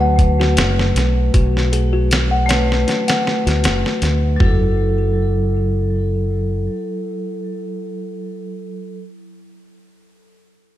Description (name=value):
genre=trip hop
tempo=78 BPM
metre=4/4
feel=swing 55% on 16ths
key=F# minor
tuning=A4 = 444 Hz
part: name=vibraphone with hard mallets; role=accompaniment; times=0.0-9.0 s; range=F#3 to B4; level=-22 LUFS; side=left 1 dB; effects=harmonic tremolo, tape echo
part: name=dark analog pad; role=sustained chords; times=0.0-4.4 s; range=F#3 to F#4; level=-30 LUFS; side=equal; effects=none
part: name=music box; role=arpeggios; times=0.0-4.8 s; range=C#4 to F#5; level=-24 LUFS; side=left 2 dB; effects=low-pass filter, ping-pong delay
part: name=deep dub fingered electric bass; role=bass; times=0.0-6.7 s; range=F#1 to D2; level=-17 LUFS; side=equal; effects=tube saturation
part: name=dusty soul sampler-style drum kit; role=drums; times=0.2-4.6 s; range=hi-hat, kick drum, snare drum, toms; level=-18 LUFS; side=equal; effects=small room ambience, gated reverb
room=small room reverb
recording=bright 1980s-style digital production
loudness=-15 LUFS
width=side -13 dB against mid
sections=0.0-4.4 A section; 4.4-7.5 B section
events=none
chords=0.0 Bm7; 4.4 F#m7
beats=0.56 | 1.33 2.10 2.87 3.64 | 4.41 5.17 5.94 6.71